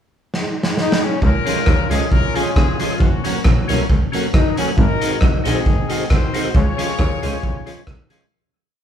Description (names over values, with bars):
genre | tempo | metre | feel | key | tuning
ska | 135 BPM | 4/4 | swing 54% on 8ths | Db major | A4 = 440 Hz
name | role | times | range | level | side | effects
raw garage drum kit | drums | 0.3-8.2 s | hi-hat, kick drum, rim click, snare drum | -17 LUFS | equal | none
warm horn section | melody | 0.8-7.8 s | Bb3 to Db5 | -23 LUFS | left 4 dB | none
bright double bass | bass | 1.2-8.0 s | F1 to Eb2 | -22 LUFS | equal | none
clean electric guitar | accompaniment | 1.5-8.2 s | Eb3 to Gb4 | -25 LUFS | right 3 dB | none
percussive tonewheel organ | stabs | 1.5-8.3 s | Db4 to Db5 | -27 LUFS | left 5 dB | chorus vibrato, slow rotary speaker
room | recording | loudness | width
light reverb | band playing live in one room | -15 LUFS | side -9 dB against mid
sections
0.0-1.2 pickup bar; 1.2-8.3 A section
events
drum fill 0.3-1.2; fade-out 6.5-8.3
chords
0.0 N.C.; 1.2 Db; 3.0 Gb; 4.8 Ab7; 6.5 Db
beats
0.34 0.78 | 1.23 1.67 2.12 2.56 | 3.00 3.45 3.89 4.34 | 4.78 5.22 5.67 6.11 | 6.55 6.99 7.43 7.88